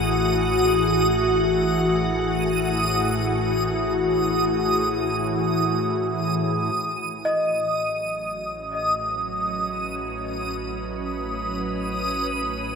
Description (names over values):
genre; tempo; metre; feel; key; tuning
ambient; free time; none; none; unclear; A4 = 439 Hz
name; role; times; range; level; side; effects
soft additive organ-like pad; sustained chords; 0.0-12.8 s; A2 to B4; -23 LUFS; left 1 dB; ensemble chorus, built-in reverb
deep rumbling drone; bass; 0.0-12.8 s; A1; -36 LUFS; equal; built-in reverb, tube saturation
backwards swelling texture; texture; 0.0-12.8 s; D#6; -27 LUFS; right 2 dB; built-in reverb
worn celesta; arpeggios; 7.3-12.8 s; D#5; -28 LUFS; left 1 dB; diffuse ambient delay
room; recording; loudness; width
wet cathedral reverb, RT60 5.4 s; faint mains hum; -21 LUFS; side -5 dB against mid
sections
0.0-6.8 A section; 6.8-12.8 B section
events
fade-out on synth drone 0.0-6.8; fade-in on ambient pad 6.8-12.8; fade-in on synth drone 6.8-12.8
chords
0.0 Amaj7(no3); 6.8 Bsus2/A